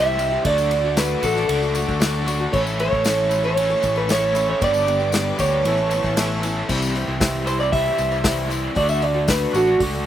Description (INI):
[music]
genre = folk rock and heartland rock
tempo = 116 BPM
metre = 4/4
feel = straight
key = D major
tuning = A4 = 439 Hz
[part]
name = electric guitar through a small old amp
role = melody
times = 0.0-9.8 s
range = F#4 to E5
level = -20 LUFS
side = right 2 dB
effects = slapback echo
[part]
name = mellow reed electric piano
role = accompaniment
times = 0.0-10.1 s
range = C#4 to E5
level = -32 LUFS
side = right 4 dB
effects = fast tremolo, slapback echo
[part]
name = picked twelve-string acoustic guitar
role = accompaniment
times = 0.0-10.1 s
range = G2 to A4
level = -30 LUFS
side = left 4 dB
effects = slapback echo
[part]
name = clear studio string section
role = sustained chords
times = 0.0-6.7 s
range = A4 to E6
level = -34 LUFS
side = left 3 dB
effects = none
[part]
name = crunchy overdriven guitar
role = riff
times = 0.0-10.1 s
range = G2 to A4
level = -26 LUFS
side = equal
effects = harmonic tremolo, slapback echo
[part]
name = fingered electric bass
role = bass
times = 0.0-10.1 s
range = G1 to D2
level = -26 LUFS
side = left 1 dB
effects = none
[part]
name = tambourine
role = percussion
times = 0.1-10.0 s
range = none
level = -36 LUFS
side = left 8 dB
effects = none
[part]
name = unplugged drum kit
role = drums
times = 0.2-9.9 s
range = crash cymbal, hi-hat, kick drum, ride cymbal, snare drum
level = -26 LUFS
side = left 1 dB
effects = none
[sound]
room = little or no reverb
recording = recorded outdoors, with no room sound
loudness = -18 LUFS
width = side -11 dB against mid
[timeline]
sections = 0.0-6.7 A section; 6.7-10.1 B section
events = clean electric guitar solo 6.7-10.1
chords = 0.5 D; 2.5 A; 4.6 G; 5.7 Aadd9; 6.7 C; 8.8 D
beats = | 0.45 0.97 1.49 2.01 | 2.53 3.05 3.57 4.09 | 4.61 5.13 5.65 6.17 | 6.69 7.21 7.73 8.25 | 8.77 9.28 9.80